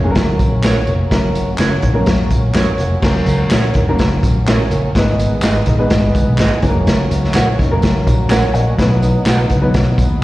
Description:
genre	uptempo 1960s-style soul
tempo	125 BPM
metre	4/4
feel	straight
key	F# major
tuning	A4 = 439 Hz
part	warm upright piano	accompaniment	0.0-10.1 s	F#3 to F#5	-20 LUFS	left 1 dB	slapback echo
part	tonewheel organ	sustained chords	0.0-10.2 s	F#3 to D#4	-23 LUFS	right 1 dB	overdrive, lush chorus
part	vintage muted fingered electric bass	bass	0.0-10.2 s	E#1 to A#2	-17 LUFS	equal	none
part	raw garage drum kit	drums	0.2-10.1 s	crash cymbal, hi-hat, kick drum, snare drum	-16 LUFS	equal	none
part	tambourine and handclaps	percussion	0.2-10.1 s	none	-30 LUFS	left 1 dB	none
part	electric guitar through a small old amp	stabs	0.6-9.4 s	C#4 to F#5	-24 LUFS	right 3 dB	slapback echo
room	light reverb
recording	live gig heard through the venue's PA, cassette tape, recital hall reverb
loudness	-12 LUFS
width	side -17 dB against mid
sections	0.0-3.0 A section; 3.0-10.2 A section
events	none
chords	0.0 F#; 4.9 G#m; 6.6 F#; 8.8 B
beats	0.15 0.63 | 1.11 1.59 2.07 2.55 | 3.03 3.51 3.99 4.47 | 4.95 5.43 5.91 6.39 | 6.87 7.34 7.82 8.30 | 8.78 9.26 9.74 10.22

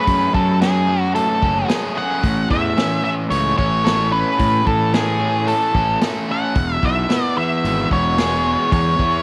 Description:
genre	classic rock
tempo	111 BPM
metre	4/4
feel	straight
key	A major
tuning	A4 = 441 Hz
part	octave-fuzz lead guitar	melody	0.0-9.2 s	G#4 to F#5	-22 LUFS	equal	distortion
part	crunchy overdriven guitar	riff	0.0-9.2 s	E2 to A4	-24 LUFS	equal	none
part	fuzz fingered electric bass	bass	0.1-9.2 s	E1 to A2	-25 LUFS	equal	overdrive
part	vintage drum kit	drums	0.1-9.1 s	hi-hat, kick drum, snare drum	-25 LUFS	equal	none
room	light reverb, small room reverb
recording	none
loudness	-18 LUFS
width	mono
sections	0.0-9.2 A section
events	none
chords	0.0 F#madd9; 2.2 A; 6.6 E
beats	| 0.07 0.61 1.15 1.70 | 2.23 2.78 3.32 3.86 | 4.40 4.94 5.48 6.02 | 6.56 7.10 7.64 8.18 | 8.72

